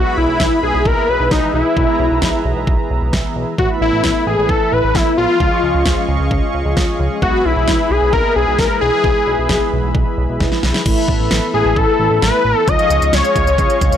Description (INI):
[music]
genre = synth-pop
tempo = 132 BPM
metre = 4/4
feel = straight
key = unclear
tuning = A4 = 439 Hz
[part]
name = wide unison lead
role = melody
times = 0.0-14.0 s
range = Eb4 to Eb5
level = -15 LUFS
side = left 2 dB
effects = analog delay
[part]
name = mellow synth brass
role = accompaniment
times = 0.0-14.0 s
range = E3 to F4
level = -24 LUFS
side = right 1 dB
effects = chorus, phaser
[part]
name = brassy analog pad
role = sustained chords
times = 0.0-14.0 s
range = G#4 to Db6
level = -23 LUFS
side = equal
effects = chorus
[part]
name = chorused synth bass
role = bass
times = 0.0-14.0 s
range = A1 to Db2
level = -20 LUFS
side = equal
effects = none
[part]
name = pop drum kit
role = drums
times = 0.4-14.0 s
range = crash cymbal, hi-hat, kick drum, snare drum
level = -18 LUFS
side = equal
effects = none
[sound]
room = light reverb, digital ambience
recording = dry, gritty hardware recording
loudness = -13 LUFS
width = side -9 dB against mid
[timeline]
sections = 0.0-10.9 A section; 10.9-14.0 B section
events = drum fill 10.4-10.9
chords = 0.0 E/B; 3.6 Asus2; 5.4 Dbadd9; 7.2 E/B; 10.9 Asus2; 12.7 Dbadd9